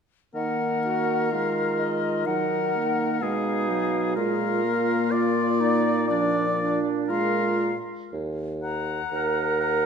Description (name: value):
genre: classical, slow romantic movement for wind quintet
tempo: 62 BPM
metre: 4/4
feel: rubato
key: Eb minor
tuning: A4 = 440 Hz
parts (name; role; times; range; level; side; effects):
- silver concert flute; melody; 0.3-9.9 s; D5 to Bb5; -30 LUFS; left 6 dB; none
- clear oboe; second line; 0.3-9.9 s; Ab4 to Gb5; -29 LUFS; left 2 dB; none
- clear clarinet; accompaniment; 0.3-9.9 s; D4 to Bb4; -28 LUFS; right 6 dB; none
- dark French horn; accompaniment; 0.3-7.8 s; F3 to Bb3; -29 LUFS; left 2 dB; none
- mellow bassoon; bass; 0.3-9.9 s; Eb2 to Eb3; -29 LUFS; right 1 dB; none
room: moderate scoring stage reverb, RT60 1.6 s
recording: minimal, uncompressed stereo recording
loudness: -22 LUFS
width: side -6 dB against mid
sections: 0.3-8.1 A section; 8.1-9.9 B section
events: none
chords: 0.3 Ebm; 4.2 Bb7; 8.1 Ebm